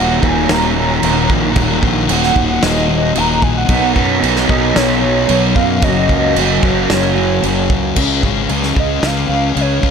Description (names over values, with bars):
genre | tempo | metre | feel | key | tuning
rock, shoegaze and dream pop | 112 BPM | 4/4 | straight | Eb minor | A4 = 440 Hz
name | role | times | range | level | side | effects
pure sine lead | melody | 0.0-9.9 s | C#5 to Bb5 | -20 LUFS | right 2 dB | chorus, phaser, digital delay
ensemble organ-string | sustained chords | 0.0-9.9 s | Eb3 to Gb5 | -25 LUFS | right 1 dB | ensemble chorus
raw garage guitar | riff | 0.0-8.0 s | Eb2 to Gb4 | -19 LUFS | right 13 dB | overdrive, reverse reverb
thick fuzz guitar | riff | 0.0-9.9 s | Eb2 to Db4 | -17 LUFS | left 10 dB | distortion, wide subtle chorus
fuzz fingered electric bass | bass | 0.0-9.9 s | Eb1 to F#2 | -19 LUFS | right 1 dB | overdrive
loose indie drum kit | drums | 0.2-9.9 s | crash cymbal, kick drum, snare drum | -18 LUFS | right 1 dB | none
room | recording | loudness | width
light reverb, small room ambience | none | -12 LUFS | side -6 dB against mid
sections
0.0-8.0 A section; 8.0-9.9 B section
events
none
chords
0.0 Ebm7; 3.7 Bmaj9; 5.8 Gbmaj7; 8.0 Db7